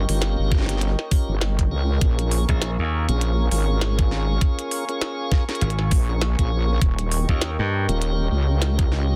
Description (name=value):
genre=glitch hop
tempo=100 BPM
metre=4/4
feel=swing 58% on 16ths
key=Bb minor pentatonic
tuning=A4 = 440 Hz
part: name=dark analog pad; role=sustained chords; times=0.0-9.2 s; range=Bb4 to Db6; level=-34 LUFS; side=equal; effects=chorus, sidechain pumping
part: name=tonewheel organ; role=stabs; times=0.0-9.2 s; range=Db4 to Bb4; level=-33 LUFS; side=equal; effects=slow rotary speaker, sidechain pumping, digital delay
part: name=wobble bass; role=bass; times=0.0-9.2 s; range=Eb1 to Db2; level=-24 LUFS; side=equal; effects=chorus, tube saturation
part: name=glitchy drum kit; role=drums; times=0.1-9.1 s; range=hi-hat, snare drum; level=-31 LUFS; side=equal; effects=soft clipping on snare
part: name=electronic kick drum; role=drums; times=0.5-8.9 s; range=none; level=-22 LUFS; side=equal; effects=none
part: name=glassy slap bass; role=bass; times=2.5-7.9 s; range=Ab1 to G2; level=-24 LUFS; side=equal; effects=none
room=little or no reverb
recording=dense, heavily limited modern master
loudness=-22 LUFS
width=mono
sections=0.0-9.2 A section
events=none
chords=0.0 Eb7; 2.0 Bbm7; 6.8 Eb7